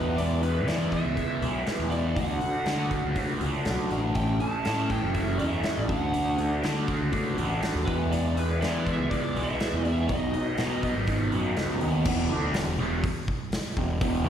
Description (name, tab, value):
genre	blues rock power trio and southern rock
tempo	121 BPM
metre	4/4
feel	straight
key	E mixolydian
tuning	A4 = 440 Hz
part	lead guitar through a small cranked amp	melody	0.0-11.0 s	B4 to A5	-34 LUFS	equal	overdrive, slapback echo
part	raw garage guitar	riff	0.0-14.3 s	E2 to F#4	-28 LUFS	right 1 dB	overdrive, phaser, slapback echo
part	fuzz picked electric bass	bass	0.0-14.3 s	E1 to E3	-28 LUFS	equal	overdrive
part	big rock drum kit	drums	0.2-14.1 s	crash cymbal, hi-hat, kick drum, snare drum	-33 LUFS	equal	none
room	light reverb, studio ambience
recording	live gig heard through the venue's PA, recital hall reverb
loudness	-24 LUFS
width	side -9 dB against mid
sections	0.0-12.1 A section; 12.1-14.3 B section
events	none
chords	0.0 E; 2.2 D; 4.2 A; 5.9 D; 7.9 E; 10.1 B; 12.1 E5